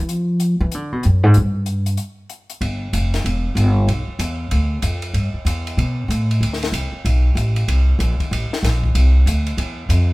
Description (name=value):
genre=jazz piano trio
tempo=190 BPM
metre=4/4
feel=swing 63% on 8ths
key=G mixolydian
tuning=A4 = 440 Hz
part: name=upright bass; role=bass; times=0.0-10.1 s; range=E1 to F3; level=-16 LUFS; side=equal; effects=none
part: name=compact cocktail drum kit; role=drums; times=0.1-10.0 s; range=hi-hat, kick drum, ride cymbal, snare drum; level=-27 LUFS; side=left 1 dB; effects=none
room=light reverb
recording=band playing live in one room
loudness=-16 LUFS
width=side -22 dB against mid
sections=0.0-2.6 A section; 2.6-10.1 B section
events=upright bass solo 0.0-2.6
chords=none